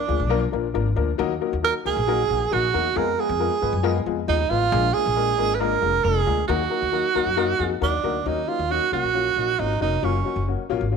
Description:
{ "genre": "uptempo 1960s-style soul", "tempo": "136 BPM", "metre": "4/4", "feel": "straight", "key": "Eb harmonic minor", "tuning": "A4 = 440 Hz", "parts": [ { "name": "breathy tenor saxophone", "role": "melody", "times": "0.0-10.5 s", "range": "Db4 to Cb5", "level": "-22 LUFS", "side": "right 9 dB", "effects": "none" }, { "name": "warm upright piano", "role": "accompaniment", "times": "0.1-11.0 s", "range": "F3 to Cb5", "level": "-26 LUFS", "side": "left 13 dB", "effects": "none" }, { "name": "upright bass", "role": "bass", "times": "0.1-11.0 s", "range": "F1 to Ab2", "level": "-26 LUFS", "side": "left 1 dB", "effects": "none" } ], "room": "moderate echo chamber reverb, RT60 1.9 s, small room ambience", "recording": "1960s-style stereo with parts hard left and right", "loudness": "-20 LUFS", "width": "side -6 dB against mid", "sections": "0.0-8.3 A section; 8.3-11.0 B section", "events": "none", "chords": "0.0 Bb; 1.2 Ebm; 3.0 Fdim; 4.7 Bb7; 6.5 Ebm; 8.3 Ebm7; 10.0 Gbmaj7" }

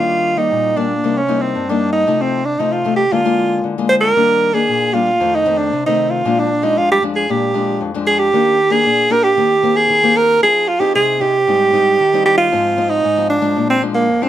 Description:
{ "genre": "samba", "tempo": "115 BPM", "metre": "4/4", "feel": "straight", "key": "Eb major", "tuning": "A4 = 440 Hz", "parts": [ { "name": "warm alto saxophone", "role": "melody", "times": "0.0-14.3 s", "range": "Bb3 to C5", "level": "-13 LUFS", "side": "right 2 dB", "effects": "none" }, { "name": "nylon-string guitar", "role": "accompaniment", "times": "0.0-14.3 s", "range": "F2 to Ab4", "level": "-19 LUFS", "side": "left 6 dB", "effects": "none" } ], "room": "moderate studio reverb, RT60 0.5 s", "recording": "none", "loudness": "-12 LUFS", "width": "side -12 dB against mid", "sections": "0.0-14.3 A section", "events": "none", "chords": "0.0 Ebmaj7; 1.0 Cm7; 2.1 F7/C; 3.1 Bb7/D; 4.2 Ebmaj7; 5.2 F7; 6.2 Bb7; 8.3 Ebmaj7; 9.4 Cm7/Eb; 10.4 Fm7; 11.5 Abmaj7; 12.5 Fm7/Ab; 13.6 Bb7" }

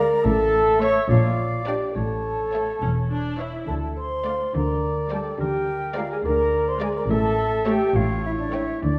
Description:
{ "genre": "cinematic, playful, whimsical film cue", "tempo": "70 BPM (dotted quarters)", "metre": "6/8", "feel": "straight", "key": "unclear", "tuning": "A4 = 438 Hz", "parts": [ { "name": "marimba with soft mallets", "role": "melody", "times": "0.0-9.0 s", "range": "D4 to C#5", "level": "-33 LUFS", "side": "equal", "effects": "none" }, { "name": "warm studio violin section", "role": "melody", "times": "0.0-8.7 s", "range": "D5 to Bb5", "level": "-42 LUFS", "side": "equal", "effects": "none" }, { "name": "dark symphonic violin section", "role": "second line", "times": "0.0-8.8 s", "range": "C#5 to D5", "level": "-37 LUFS", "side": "equal", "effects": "none" }, { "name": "mellow silver concert flute", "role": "second line", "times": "0.0-9.0 s", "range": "D5 to C#6", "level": "-34 LUFS", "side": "equal", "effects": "none" }, { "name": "warm oboe", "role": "second line", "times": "0.0-9.0 s", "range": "Bb4 to E5", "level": "-35 LUFS", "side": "equal", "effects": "none" }, { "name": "warm studio viola section", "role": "accompaniment", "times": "0.0-8.7 s", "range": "G3 to E4", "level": "-34 LUFS", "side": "equal", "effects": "none" }, { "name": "mellow French horn section", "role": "sustained chords", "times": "0.0-9.0 s", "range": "D4 to C#5", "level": "-26 LUFS", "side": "equal", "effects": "none" }, { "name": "clear studio double bass section", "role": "bass", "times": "0.0-9.0 s", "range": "E1 to D2", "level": "-30 LUFS", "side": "equal", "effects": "none" }, { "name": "warm studio cello section", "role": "bass", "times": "0.0-9.0 s", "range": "E2 to D3", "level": "-32 LUFS", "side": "equal", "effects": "none" } ], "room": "wet scoring stage reverb, RT60 1.5 s", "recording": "none", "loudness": "-23 LUFS", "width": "mono", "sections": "0.0-9.0 A section", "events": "none", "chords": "0.2 A; 1.1 Bb; 2.0 A; 3.7 Dm; 4.5 Gm/D; 5.4 Bb7/D; 7.1 A; 8.0 A7" }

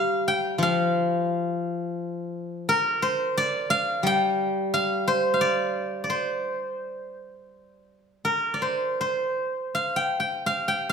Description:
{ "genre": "chinese traditional, Chinese solo plucked strings", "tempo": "77-89 BPM", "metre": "4/4", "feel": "rubato", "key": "C shang mode", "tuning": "A4 = 435 Hz", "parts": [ { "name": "steel-string zither", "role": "solo", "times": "0.0-10.9 s", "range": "F3 to G5", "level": "-23 LUFS", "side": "equal", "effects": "none" } ], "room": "wet recital hall reverb, RT60 1.4 s", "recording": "none", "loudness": "-23 LUFS", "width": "side -6 dB against mid", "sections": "0.0-9.0 A section; 9.0-10.9 B section", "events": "none", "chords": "none" }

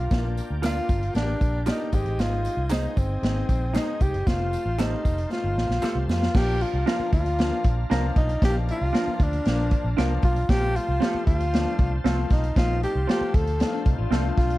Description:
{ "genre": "uptempo 1960s-style soul", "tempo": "116 BPM", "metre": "4/4", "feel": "straight", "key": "Bb major", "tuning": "A4 = 440 Hz", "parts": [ { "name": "breathy tenor saxophone", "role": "melody", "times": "0.0-14.6 s", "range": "C4 to A4", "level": "-28 LUFS", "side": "equal", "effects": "analog delay" }, { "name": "overdriven tonewheel organ", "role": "sustained chords", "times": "0.0-14.6 s", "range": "Bb4 to Bb5", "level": "-43 LUFS", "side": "equal", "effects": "chorus vibrato, lush chorus" }, { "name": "vintage muted fingered electric bass", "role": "bass", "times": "0.0-14.6 s", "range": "F1 to F2", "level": "-26 LUFS", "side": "equal", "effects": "none" }, { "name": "warm baby grand piano", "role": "accompaniment", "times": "0.1-14.5 s", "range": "F3 to G4", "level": "-33 LUFS", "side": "left 4 dB", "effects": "none" }, { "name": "vintage drum kit", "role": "drums", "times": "0.1-14.6 s", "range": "crash cymbal, hi-hat, kick drum, snare drum", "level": "-24 LUFS", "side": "equal", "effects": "none" }, { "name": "tambourine and handclaps", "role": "percussion", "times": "0.1-6.2 s", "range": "none", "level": "-44 LUFS", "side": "left 2 dB", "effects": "none" }, { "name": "semi-hollow electric guitar", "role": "stabs", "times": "0.6-14.3 s", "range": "C4 to D5", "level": "-32 LUFS", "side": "right 7 dB", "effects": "phaser" }, { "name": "electric guitar through a small old amp", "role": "riff", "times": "13.7-14.6 s", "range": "C4 to F4", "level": "-33 LUFS", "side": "left 10 dB", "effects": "analog chorus" } ], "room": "light reverb, small room ambience", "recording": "dark, warm production", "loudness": "-21 LUFS", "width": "side -17 dB against mid", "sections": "0.0-6.3 A section; 6.3-14.6 B section", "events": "drum fill 5.3-6.3", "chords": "0.0 Bb; 1.9 Ab; 4.3 F; 6.3 Bb; 10.5 F/Bb" }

